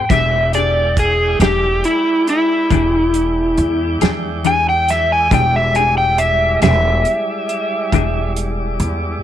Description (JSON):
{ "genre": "slow blues", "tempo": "46 BPM (dotted quarters)", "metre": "12/8", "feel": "straight", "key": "unclear", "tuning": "A4 = 439 Hz", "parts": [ { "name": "overdriven slide guitar", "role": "melody", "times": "0.0-8.3 s", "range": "E4 to G#5", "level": "-15 LUFS", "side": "equal", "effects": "none" }, { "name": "tonewheel organ", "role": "sustained chords", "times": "0.0-9.2 s", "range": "G3 to G5", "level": "-25 LUFS", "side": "right 1 dB", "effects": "slow rotary speaker" }, { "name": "upright bass", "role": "bass", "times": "0.0-9.2 s", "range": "E1 to A2", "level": "-19 LUFS", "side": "equal", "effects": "none" }, { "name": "clean electric guitar", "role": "accompaniment", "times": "0.1-8.2 s", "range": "E3 to G#4", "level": "-20 LUFS", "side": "left 13 dB", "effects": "tremolo" }, { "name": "warm soul drum kit", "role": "drums", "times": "0.1-9.0 s", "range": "hi-hat, kick drum, snare drum", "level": "-20 LUFS", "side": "right 3 dB", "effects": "none" } ], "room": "small room ambience", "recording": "1960s-style stereo", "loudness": "-13 LUFS", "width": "side -11 dB against mid", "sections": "0.0-9.2 A section", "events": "electric slide guitar solo 0.0-9.2", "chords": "0.1 E7#9" }